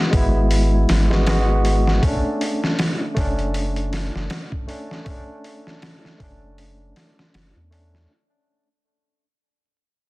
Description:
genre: trip hop.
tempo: 79 BPM.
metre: 4/4.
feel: swing 57% on 16ths.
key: unclear.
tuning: A4 = 440 Hz.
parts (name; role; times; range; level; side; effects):
barky tine electric piano; accompaniment; 0.0-8.1 s; G#3 to F#4; -24 LUFS; equal; harmonic tremolo, tape echo.
soft dub sub bass; bass; 0.1-8.1 s; F#1 to E2; -19 LUFS; equal; none.
trip hop sampler-style drum kit; drums; 0.1-8.1 s; hi-hat, kick drum, snare drum; -23 LUFS; equal; overdrive, small room ambience.
room: little or no reverb.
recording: dense, heavily limited modern master, vinyl crackle.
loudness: -17 LUFS.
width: side -21 dB against mid.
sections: 0.0-8.1 A section.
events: fade-out 0.0-8.1.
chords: 0.0 C#m7 (rootless); 2.0 Bm7 (rootless).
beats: 0.50 1.26 | 2.02 2.78 3.54 4.30 | 5.06 5.82 6.58 7.34.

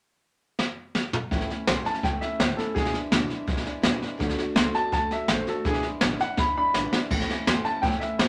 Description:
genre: rockabilly.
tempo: 166 BPM.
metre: 4/4.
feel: straight.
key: A major.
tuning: A4 = 440 Hz.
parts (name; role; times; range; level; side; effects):
jazz brush drum kit; drums; 0.6-8.3 s; crash cymbal, hi-hat, kick drum, snare drum, toms; -28 LUFS; equal; none.
picked steel-string acoustic guitar; accompaniment; 1.3-8.3 s; E2 to F#4; -34 LUFS; equal; none.
upright bass; bass; 1.3-8.3 s; G#1 to A2; -38 LUFS; equal; none.
warm upright piano; melody; 1.7-8.3 s; G#4 to C6; -29 LUFS; equal; none.
room: wet small room reverb, RT60 0.6 s.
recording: none.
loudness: -26 LUFS.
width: mono.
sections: 0.0-1.3 A section; 1.3-7.1 B section; 7.1-8.3 C section.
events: drum fill 0.6-1.3, 6.4-7.1.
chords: 0.0 N.C.; 1.3 A; 2.8 E7; 4.2 D; 5.7 E7; 7.1 A.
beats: 0.23 0.59 0.95 | 1.31 1.68 2.04 2.40 | 2.76 3.12 3.49 3.85 | 4.21 4.57 4.94 5.30 | 5.66 6.02 6.39 6.75 | 7.11 7.47 7.84 8.20.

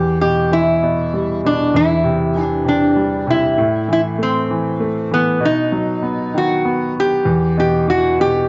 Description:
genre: pop.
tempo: 65 BPM (dotted quarters).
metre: 6/8.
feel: straight.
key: E minor.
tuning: A4 = 439 Hz.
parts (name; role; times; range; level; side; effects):
metal-body resonator slide guitar; melody; 0.0-8.5 s; B3 to G4; -19 LUFS; equal; cassette tape.
bright concert grand piano; accompaniment; 0.0-8.5 s; E2 to B3; -20 LUFS; equal; none.
room: wet studio reverb, RT60 0.6 s.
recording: home recording on cassette, nothing above 7.8 kHz.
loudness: -17 LUFS.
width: mono.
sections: 0.0-8.5 A section.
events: none.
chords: 0.0 Em; 1.7 C/E; 3.6 A5; 5.4 B; 7.3 Em.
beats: 0.82 | 1.74 2.66 | 3.58 4.50 | 5.42 6.34 | 7.26 8.19.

